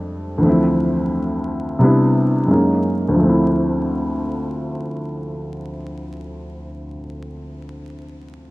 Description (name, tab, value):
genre	hip hop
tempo	87 BPM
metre	4/4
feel	swing 56% on 16ths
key	unclear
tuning	A4 = 442 Hz
part	felt-muted upright piano	accompaniment	0.0-8.5 s	D2 to E4	-18 LUFS	equal	cassette tape, low-pass filter
room	light reverb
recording	vinyl crackle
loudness	-16 LUFS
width	side -20 dB against mid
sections	0.0-3.2 A section; 3.2-5.9 B section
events	filter sweep on felt piano 0.0-3.2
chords	0.4 Dm9; 1.8 Cmaj9; 2.5 F#69; 3.2 Dm9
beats	| 0.42 1.11 1.80 2.49 | 3.18 3.87 4.56 5.25